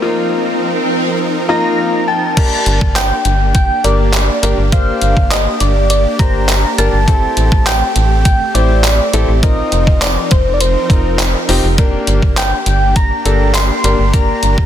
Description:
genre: dance-pop.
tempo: 102 BPM.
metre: 4/4.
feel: straight.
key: G minor.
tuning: A4 = 436 Hz.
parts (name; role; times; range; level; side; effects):
soft struck synth lead; melody; 0.0-14.7 s; Bb4 to C6; -18 LUFS; equal; chorus, ping-pong delay.
clear concert grand piano; accompaniment; 0.0-14.7 s; Bb3 to G5; -19 LUFS; left 3 dB; sidechain pumping.
supersaw chords; sustained chords; 0.0-14.7 s; F3 to Bb4; -21 LUFS; right 1 dB; sidechain pumping.
swell; sound effects; 0.0-1.2 s; none; -21 LUFS; right 1 dB; none.
detuned 8-bit digital drum machine; drums; 2.4-14.7 s; crash cymbal, handclaps, hi-hat, kick drum; -15 LUFS; equal; soft clipping on snare.
slap-like FM bass; bass; 2.7-14.7 s; F1 to A1; -15 LUFS; equal; sidechain pumping.
tambourine; percussion; 3.0-13.7 s; none; -29 LUFS; right 13 dB; none.
room: light reverb, digital ambience.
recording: dense, heavily limited modern master.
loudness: -11 LUFS.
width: side -10 dB against mid.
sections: 0.0-2.4 A section; 2.4-14.7 B section.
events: swell 0.0-2.4; break 0.0-2.4; grand piano fill 1.2-2.4.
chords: 0.0 F7sus4; 2.4 Gm; 7.1 Am7; 9.4 F7sus4; 11.8 Gm.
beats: | 0.02 0.61 1.20 1.78 | 2.37 2.96 3.55 4.14 | 4.72 5.31 5.90 6.49 | 7.08 7.67 8.25 8.84 | 9.43 10.02 10.61 11.20 | 11.78 12.37 12.96 13.55 | 14.14.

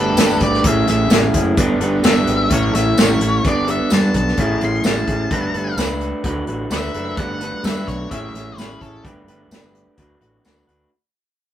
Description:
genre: indie rock.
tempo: 129 BPM.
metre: 4/4.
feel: straight.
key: unclear.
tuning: A4 = 440 Hz.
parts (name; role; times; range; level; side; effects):
octave-fuzz lead guitar; melody; 0.0-9.0 s; A4 to C6; -23 LUFS; left 2 dB; distortion.
string machine, violins; sustained chords; 0.0-3.4 s; C#3 to G4; -28 LUFS; left 1 dB; none.
electric guitar through a small old amp; riff; 0.0-10.9 s; D3 to C#5; -20 LUFS; right 1 dB; none.
growling fingered electric bass; bass; 0.0-10.8 s; F#1 to G2; -23 LUFS; equal; overdrive.
unplugged drum kit; drums; 0.2-10.8 s; hi-hat, kick drum, snare drum, tambourine; -18 LUFS; equal; none.
room: light reverb.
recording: rough rehearsal-room recording.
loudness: -15 LUFS.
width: side -11 dB against mid.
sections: 0.0-3.4 A section; 3.4-10.9 B section.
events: lead electric guitar solo 0.0-3.4, 3.4-10.9; fade-out 3.4-10.9.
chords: 0.0 Gadd9; 0.7 Amaj7; 1.6 Gadd9; 2.5 A; 3.4 Gadd9; 4.4 Amaj7; 5.3 Gadd9; 6.2 D6; 7.2 Gadd9; 8.1 Amaj7; 9.0 Gadd9; 10.0 D6.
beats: 0.18 0.65 1.12 | 1.58 2.05 2.51 2.98 | 3.44 3.91 4.38 4.84 | 5.31 5.78 6.24 6.71 | 7.17 7.64 8.11 8.57 | 9.04 9.51 9.97 10.44.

